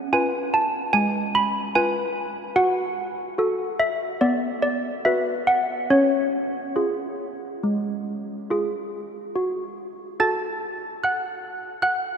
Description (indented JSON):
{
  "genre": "classical, tune for handbells",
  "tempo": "69-74 BPM",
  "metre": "4/4",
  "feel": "straight",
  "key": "F# minor",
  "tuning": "A4 = 437 Hz",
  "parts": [
    { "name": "malleted handbells", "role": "solo", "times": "0.0-12.2 s", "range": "G#3 to A6", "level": "-22 LUFS", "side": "equal", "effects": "none" }
  ],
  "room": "wet cathedral reverb, RT60 5.0 s",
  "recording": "none",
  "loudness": "-21 LUFS",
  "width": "side -7 dB against mid",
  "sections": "0.0-9.3 A section; 9.3-12.2 B section",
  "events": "none",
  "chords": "0.0 C#7 (rootless); 2.6 F#m; 4.2 B5; 5.9 C#; 9.3 F#m",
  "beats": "0.14 0.95 1.76 | 2.58 3.40 4.22 5.05 | 5.90 6.76 7.62 8.49 | 9.34 10.18 11.00 11.81"
}